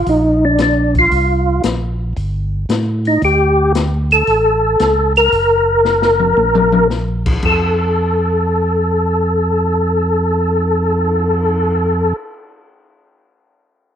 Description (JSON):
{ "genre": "soul jazz organ trio", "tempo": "114 BPM", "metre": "4/4", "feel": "swing 68% on 8ths", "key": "F major", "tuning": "A4 = 439 Hz", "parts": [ { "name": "percussive tonewheel organ", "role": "melody", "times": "0.0-12.2 s", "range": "D4 to Bb4", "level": "-14 LUFS", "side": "equal", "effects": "slow rotary speaker, chorus vibrato" }, { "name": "tonewheel organ", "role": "bass", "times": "0.0-12.1 s", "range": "Gb1 to A2", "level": "-18 LUFS", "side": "equal", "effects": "stopped rotary speaker" }, { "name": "open jazz drum kit", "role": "drums", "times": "0.1-11.5 s", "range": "crash cymbal, cymbal swell, hi-hat, kick drum, snare drum, toms", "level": "-22 LUFS", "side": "left 4 dB", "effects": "none" } ], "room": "moderate spring reverb, RT60 1.3 s, studio reverb", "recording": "1960s-style stereo", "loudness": "-12 LUFS", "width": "side -9 dB against mid", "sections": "0.0-7.4 A section; 7.4-11.7 B section", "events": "drum fill 5.9-6.9", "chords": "0.0 Gm7 (rootless); 1.1 C7sus4; 3.2 Dsus4; 5.3 Gb; 7.4 F", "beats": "0.07 0.59 | 1.12 1.65 2.17 2.70 | 3.22 3.75 4.28 4.80 | 5.33 5.86 6.38 6.91 | 7.44 7.96 8.49 9.02 | 9.54 10.07 10.60 11.12" }